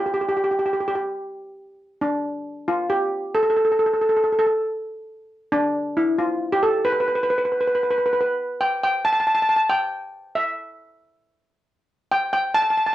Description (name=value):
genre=calypso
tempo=137 BPM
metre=4/4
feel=straight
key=unclear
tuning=A4 = 439 Hz
part: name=steel pan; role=solo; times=0.0-12.9 s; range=D4 to A5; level=-19 LUFS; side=equal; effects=cassette tape
room=wet small room reverb, RT60 0.5 s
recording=home recording on cassette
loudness=-19 LUFS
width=side -14 dB against mid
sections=0.0-8.8 A section; 8.8-12.9 B section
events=none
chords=none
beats=| 0.05 0.49 0.93 1.37 | 1.80 2.25 2.68 3.12 | 3.56 4.00 4.44 4.88 | 5.32 5.76 6.20 6.63 | 7.07 7.51 7.95 8.39 | 8.82 9.26 9.70 10.14 | 10.57 11.01 11.45 11.88 | 12.32 12.76